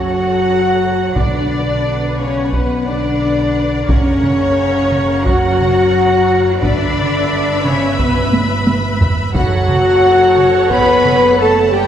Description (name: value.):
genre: cinematic, epic orchestral film score.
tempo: 88 BPM.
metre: 4/4.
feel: straight.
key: unclear.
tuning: A4 = 440 Hz.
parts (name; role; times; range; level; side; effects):
rich symphonic violin section; melody; 0.0-11.9 s; B4 to B5; -24 LUFS; left 3 dB; none.
warm symphonic violin section; second line; 0.0-11.9 s; E5 to B5; -26 LUFS; left 2 dB; none.
warm symphonic viola section; accompaniment; 0.0-11.9 s; A4 to C#5; -24 LUFS; right 2 dB; none.
mellow French horn section; sustained chords; 0.0-11.9 s; B3 to B4; -16 LUFS; left 3 dB; none.
warm trombone section; sustained chords; 0.0-11.9 s; B2 to B3; -22 LUFS; right 2 dB; none.
warm trumpet section; stabs; 0.0-11.9 s; B4 to B5; -21 LUFS; right 3 dB; none.
rich studio double bass section; bass; 0.0-11.9 s; F#1 to B1; -21 LUFS; right 2 dB; none.
rich symphonic cello section; bass; 0.0-11.9 s; B3 to B4; -22 LUFS; equal; none.
taiko ensemble; drums; 1.2-11.4 s; none; -18 LUFS; right 1 dB; none.
timpani; percussion; 1.2-2.1 s; B2; -31 LUFS; equal; none.
room: wet church reverb, RT60 2.5 s.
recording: recorded in a church or concert hall.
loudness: -11 LUFS.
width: side -9 dB against mid.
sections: 0.0-11.9 A section.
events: drum fill 8.3-9.3.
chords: 0.0 F#m; 1.2 Bm; 3.9 F#; 6.6 Em/G; 9.3 F#m.